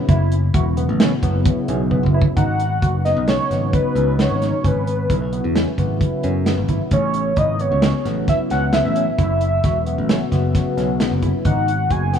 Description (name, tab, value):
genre	progressive instrumental, band music in an uneven meter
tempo	132 BPM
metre	5/4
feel	straight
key	unclear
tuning	A4 = 440 Hz
part	sweeping resonant pad	accompaniment	0.0-12.2 s	C#3 to F#4	-24 LUFS	equal	chorus
part	barky tine electric piano	arpeggios	0.1-12.2 s	B3 to F#4	-28 LUFS	equal	analog chorus, tape echo
part	modern bright picked electric bass	bass	0.1-12.2 s	E1 to F#2	-20 LUFS	equal	none
part	warm soul drum kit	drums	0.1-12.2 s	hi-hat, kick drum, snare drum	-20 LUFS	equal	none
part	fat analog lead	melody	2.4-12.2 s	B4 to G#5	-22 LUFS	equal	chorus, tape echo
room	light reverb, studio reverb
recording	rough home demo mix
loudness	-16 LUFS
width	side -8 dB against mid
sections	0.0-2.4 A section; 2.4-12.2 B section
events	drum fill 1.9-2.4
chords	0.1 F#7(no3); 2.4 G#m7; 4.6 C#m7/G#; 6.9 Amaj7; 9.2 F#7(no3); 11.5 G#m7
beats	| 0.09 0.54 1.00 1.45 1.91 | 2.36 2.82 3.28 3.73 4.19 | 4.64 5.10 5.55 6.01 6.46 | 6.92 7.37 7.83 8.28 8.73 | 9.19 9.64 10.10 10.55 11.00 | 11.45 11.91